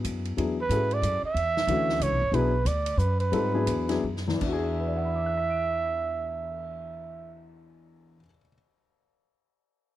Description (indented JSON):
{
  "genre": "modal jazz",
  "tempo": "156-184 BPM",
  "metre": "3/4",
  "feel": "swing 62% on 8ths",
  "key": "E mixolydian",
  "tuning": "A4 = 440 Hz",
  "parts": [
    { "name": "warm baby grand piano", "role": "accompaniment", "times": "0.0-8.5 s", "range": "E2 to D7", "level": "-30 LUFS", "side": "left 4 dB", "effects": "none" },
    { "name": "upright bass", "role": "bass", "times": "0.0-8.2 s", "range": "G#1 to G#2", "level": "-29 LUFS", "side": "equal", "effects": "none" },
    { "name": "swinging big-band drum kit", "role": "drums", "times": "0.0-6.6 s", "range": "crash cymbal, cymbal swell, hi-hat, kick drum, ride cymbal, snare drum", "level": "-39 LUFS", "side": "equal", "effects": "none" },
    { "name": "breathy trumpet", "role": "melody", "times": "0.6-7.5 s", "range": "B4 to E5", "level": "-28 LUFS", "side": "right 4 dB", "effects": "none" }
  ],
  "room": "little or no reverb",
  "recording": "none",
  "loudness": "-24 LUFS",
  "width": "side -13 dB against mid",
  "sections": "0.0-4.4 A section; 4.4-6.7 B section",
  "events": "slowing down 2.3-4.4",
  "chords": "0.0 E9"
}